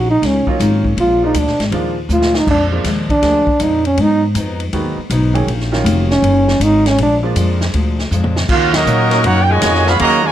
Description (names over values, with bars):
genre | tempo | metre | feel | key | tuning
jazz, big band swing | 160 BPM | 4/4 | swing 66% on 8ths | unclear | A4 = 441 Hz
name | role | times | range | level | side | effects
mellow trombone | melody | 0.0-7.2 s | Db4 to F4 | -14 LUFS | right 1 dB | none
picked steel-string acoustic guitar | accompaniment | 0.0-10.3 s | Ab2 to Gb4 | -24 LUFS | left 2 dB | none
upright bass | bass | 0.0-10.3 s | F1 to Bb2 | -16 LUFS | left 1 dB | none
vintage drum kit | drums | 0.2-10.1 s | crash cymbal, hi-hat, kick drum, ride cymbal, snare drum, toms | -22 LUFS | equal | none
clear baby grand piano | accompaniment | 0.5-7.7 s | Eb3 to Ab4 | -22 LUFS | right 2 dB | none
warm trumpet section | melody | 8.5-10.3 s | Db4 to Cb6 | -14 LUFS | right 2 dB | none
clear trombone section | second line | 8.5-10.3 s | Bb2 to Gb4 | -18 LUFS | right 3 dB | none
dark trombone section | sustained chords | 9.1-9.9 s | Gb3 to Bb4 | -23 LUFS | left 3 dB | none
room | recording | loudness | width
light reverb | none | -12 LUFS | side -11 dB against mid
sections
0.0-8.5 A section; 8.5-10.3 B section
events
trombone solo 0.0-8.5; drum fill 2.1-2.5, 8.1-8.5; band accent 8.7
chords
0.0 Ebm7; 1.0 Bb7; 4.0 Abm7; 5.5 Ebm7; 7.0 Bb7; 8.5 Ab7(no3)